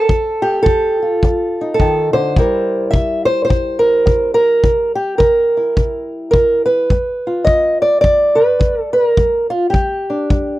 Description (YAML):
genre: acoustic country blues, solo or duo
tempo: 106 BPM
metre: 4/4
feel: swing 62% on 8ths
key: C mixolydian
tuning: A4 = 440 Hz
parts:
  - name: fingerpicked old ladder-braced acoustic guitar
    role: melody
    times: 0.0-10.6 s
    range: C3 to E5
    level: -13 LUFS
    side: right 1 dB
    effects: none
  - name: kick drum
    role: drums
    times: 0.1-10.5 s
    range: none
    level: -16 LUFS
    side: equal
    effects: none
room: little or no reverb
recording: dry, close 1970s-style studio recording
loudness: -12 LUFS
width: side -16 dB against mid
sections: 0.0-10.6 A section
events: none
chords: 0.1 F7; 2.4 C7; 6.9 G7